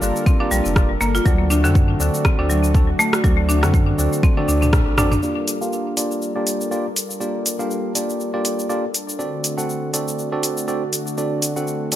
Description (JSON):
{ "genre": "afro house", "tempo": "121 BPM", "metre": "4/4", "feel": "swing 56% on 16ths", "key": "G minor", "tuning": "A4 = 441 Hz", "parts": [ { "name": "warm analog pad", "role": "sustained chords", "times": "0.0-12.0 s", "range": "D3 to Bb4", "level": "-27 LUFS", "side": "equal", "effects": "chorus, sidechain pumping" }, { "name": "tine electric piano", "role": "stabs", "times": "0.0-12.0 s", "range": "Bb3 to F#5", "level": "-24 LUFS", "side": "right 1 dB", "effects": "sidechain pumping, low-pass filter, ping-pong delay" }, { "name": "warm sub bass", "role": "bass", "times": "0.0-5.2 s", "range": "F1 to F#2", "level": "-20 LUFS", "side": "equal", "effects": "sidechain pumping" }, { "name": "deep house drum kit", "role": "drums", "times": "0.0-12.0 s", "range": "cabasa, hi-hat, rim click, toms", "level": "-24 LUFS", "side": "equal", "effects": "small room ambience" }, { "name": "buzzing marimba with hard mallets", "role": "arpeggios", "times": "0.3-5.2 s", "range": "D3 to F#4", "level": "-22 LUFS", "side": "left 1 dB", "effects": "sidechain pumping, ping-pong delay" }, { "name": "electronic kick drum", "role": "drums", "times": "0.3-4.8 s", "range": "none", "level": "-16 LUFS", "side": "equal", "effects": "small room ambience" } ], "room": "light reverb, digital ambience", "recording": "none", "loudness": "-17 LUFS", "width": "side -12 dB against mid", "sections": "0.0-5.2 A section; 5.2-12.0 B section", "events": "drum fill 4.2-5.2; band accent 4.7; filter sweep on tine electric piano 5.2-12.0", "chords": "0.0 Gm7; 1.3 D7; 5.2 Gm7; 9.2 D7", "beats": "0.27 0.76 | 1.26 1.75 2.25 2.75 | 3.24 3.74 4.23 4.73 | 5.22 5.72 6.22 6.71 | 7.21 7.70 8.20 8.70 | 9.19 9.69 10.18 10.68 | 11.18 11.67" }